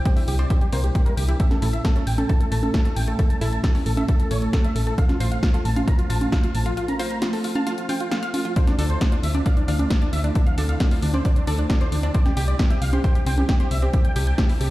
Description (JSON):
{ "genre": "uplifting trance", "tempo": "134 BPM", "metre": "4/4", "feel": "straight", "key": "D minor", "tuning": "A4 = 445 Hz", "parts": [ { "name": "lush unison pad", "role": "sustained chords", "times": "0.0-14.7 s", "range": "C3 to A4", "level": "-31 LUFS", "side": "equal", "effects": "chorus, sidechain pumping" }, { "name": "dense compressed supersaw", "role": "melody", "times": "0.1-14.7 s", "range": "D4 to Bb5", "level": "-29 LUFS", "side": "right 1 dB", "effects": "sidechain pumping, low-pass filter, tape echo" }, { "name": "analog pluck", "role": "arpeggios", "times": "0.1-14.5 s", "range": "G3 to F5", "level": "-33 LUFS", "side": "left 2 dB", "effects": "chorus, sidechain pumping, dub echo" }, { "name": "electronic kick drum", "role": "drums", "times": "0.1-14.5 s", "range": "none", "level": "-20 LUFS", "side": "equal", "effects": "overdrive" }, { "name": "punchy analog drum machine", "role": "drums", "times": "0.1-14.7 s", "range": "congas, hi-hat, snare drum", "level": "-28 LUFS", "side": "right 1 dB", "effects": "overdrive" }, { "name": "solid FM bass", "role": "bass", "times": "0.3-14.7 s", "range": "A1 to D2", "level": "-22 LUFS", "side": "equal", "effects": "sidechain pumping" } ], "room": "digital ambience", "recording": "played on a big sound system in a bare room, stone room reverb", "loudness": "-19 LUFS", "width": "side -17 dB against mid", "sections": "0.0-14.7 A section", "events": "filter sweep on analog synth pad 0.0-14.7; break 6.8-8.6", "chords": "0.0 Cadd9; 1.4 A; 5.0 F/A; 8.6 Dm7; 12.1 Cadd9" }